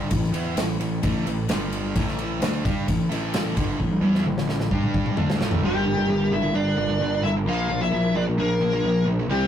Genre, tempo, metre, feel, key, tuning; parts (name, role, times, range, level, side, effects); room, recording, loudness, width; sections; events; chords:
heavy metal; 130 BPM; 4/4; straight; A4 = 445 Hz
sludgy distorted guitar; riff; 0.0-9.5 s; G2 to G4; -29 LUFS; left 2 dB; overdrive
tight distorted guitar; riff; 0.0-9.5 s; G2 to G4; -29 LUFS; right 2 dB; distortion
fuzz picked electric bass; bass; 0.0-9.5 s; G1 to G2; -27 LUFS; equal; overdrive
modern studio drum kit; drums; 0.1-5.6 s; kick drum, ride cymbal, snare drum, toms; -24 LUFS; equal
muted studio string section; sustained chords; 5.6-9.5 s; E3 to Bb4; -32 LUFS; equal
high-gain lead guitar; melody; 5.7-9.5 s; G4 to F5; -25 LUFS; left 2 dB; distortion
high-gain lead guitar; second line; 5.7-9.5 s; G3 to F4; -30 LUFS; right 2 dB; distortion
moderate booth ambience, RT60 0.2 s; rough rehearsal-room recording, warm saturation; -21 LUFS; side -9 dB against mid
0.0-5.6 A section; 5.6-9.5 B section
drum fill 3.8-5.6
0.0 A5; 1.5 G5; 1.9 A5; 4.7 G5; 5.2 A5; 5.6 Gm; 7.5 Bb